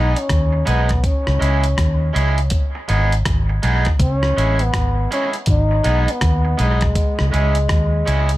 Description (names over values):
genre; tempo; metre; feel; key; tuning
roots reggae; 81 BPM; 4/4; swing 64% on 16ths; C# minor; A4 = 438 Hz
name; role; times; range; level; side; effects
warm trombone; melody; 0.0-8.4 s; G#3 to D#4; -23 LUFS; left 1 dB; dub echo
electric guitar at the edge of break-up; accompaniment; 0.0-8.3 s; G#3 to G#4; -24 LUFS; right 2 dB; dub echo
vintage muted fingered electric bass; bass; 0.0-8.4 s; G#1 to D#2; -17 LUFS; equal; none
dusty soul sampler-style drum kit; drums; 0.2-8.4 s; hi-hat, kick drum, rim click; -21 LUFS; equal; none
room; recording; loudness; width
little or no reverb; none; -15 LUFS; side -16 dB against mid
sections
0.0-8.4 A section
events
none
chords
0.0 G#m; 1.0 C#m; 2.5 G#m; 4.0 C#m; 5.5 G#m; 7.0 C#m